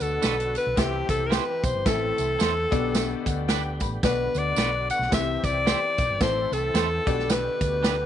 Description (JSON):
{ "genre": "uptempo 1960s-style soul", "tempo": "110 BPM", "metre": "4/4", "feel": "swing 59% on 8ths", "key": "unclear", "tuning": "A4 = 439 Hz", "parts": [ { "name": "bright alto saxophone", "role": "melody", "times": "0.0-8.1 s", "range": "G4 to F#5", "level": "-26 LUFS", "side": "left 2 dB", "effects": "none" }, { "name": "clear upright piano", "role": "accompaniment", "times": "0.0-7.9 s", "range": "A2 to B5", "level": "-32 LUFS", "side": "left 12 dB", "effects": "none" }, { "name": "tonewheel organ", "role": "sustained chords", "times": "0.0-8.1 s", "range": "D3 to A4", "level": "-36 LUFS", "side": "right 1 dB", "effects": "overdrive, chorus vibrato, slow rotary speaker" }, { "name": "hollow-body short-scale fingered electric bass", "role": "bass", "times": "0.0-8.1 s", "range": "G1 to E2", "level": "-30 LUFS", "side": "right 1 dB", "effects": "none" }, { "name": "natural country drum kit", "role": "drums", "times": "0.0-8.0 s", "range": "hi-hat, kick drum, snare drum", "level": "-27 LUFS", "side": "right 1 dB", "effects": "none" }, { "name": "tambourine", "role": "percussion", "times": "0.0-8.0 s", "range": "none", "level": "-38 LUFS", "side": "right 19 dB", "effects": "none" }, { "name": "electric guitar at the edge of break-up", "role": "stabs", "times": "0.2-8.0 s", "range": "D4 to C5", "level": "-32 LUFS", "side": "right 13 dB", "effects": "none" } ], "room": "moderate spring reverb, RT60 1.5 s", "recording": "1960s-style stereo with parts hard left and right, nothing above 10.9 kHz", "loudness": "-22 LUFS", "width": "side -10 dB against mid", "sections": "0.0-8.1 A section", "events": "upright piano fill 2.4-4.0", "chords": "0.0 Bm; 0.8 C; 1.9 Am; 2.7 G/B; 4.0 Bm; 5.1 C; 6.2 Am; 7.0 G/B" }